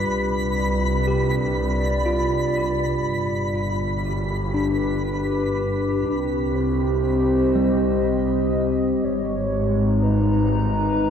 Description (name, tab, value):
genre	ambient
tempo	60 BPM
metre	3/4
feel	straight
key	unclear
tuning	A4 = 440 Hz
part	warbly tape-like pad	sustained chords	0.0-11.1 s	C3 to Bb5	-23 LUFS	equal	chorus, built-in reverb
part	tine electric piano	arpeggios	0.0-9.2 s	G3 to B4	-27 LUFS	left 1 dB	diffuse ambient delay
part	clear studio double bass section	bass	0.0-11.1 s	G1 to C2	-25 LUFS	equal	none
part	twinkling granular texture	texture	0.0-6.1 s	B5	-30 LUFS	equal	built-in reverb
part	warm velvety synth lead	melody	6.5-11.1 s	Cb5 to Eb5	-32 LUFS	right 2 dB	chorus, diffuse ambient delay
room	wet lush hall reverb, RT60 2.8 s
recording	dark, warm production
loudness	-19 LUFS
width	side -8 dB against mid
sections	0.0-6.0 A section; 6.0-11.1 B section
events	fade-in on soft synth lead 6.0-11.1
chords	0.1 Csus2; 3.0 G; 6.0 Cm; 9.0 Abm